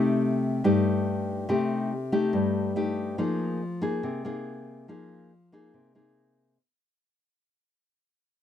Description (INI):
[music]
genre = bossa nova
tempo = 141 BPM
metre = 4/4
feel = straight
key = unclear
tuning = A4 = 440 Hz
[part]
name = nylon-string guitar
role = solo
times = 0.0-6.6 s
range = G2 to Ab4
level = -25 LUFS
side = left 2 dB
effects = none
[sound]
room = light reverb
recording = dry, close 1970s-style studio recording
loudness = -25 LUFS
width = side -9 dB against mid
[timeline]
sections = 0.0-6.6 A section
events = fade-out 0.0-6.6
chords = 0.0 Cm6; 3.2 Fm7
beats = 0.21 0.63 1.06 | 1.48 1.91 2.33 2.76 | 3.19 3.61 4.04 4.46 | 4.89 5.31 5.74 6.17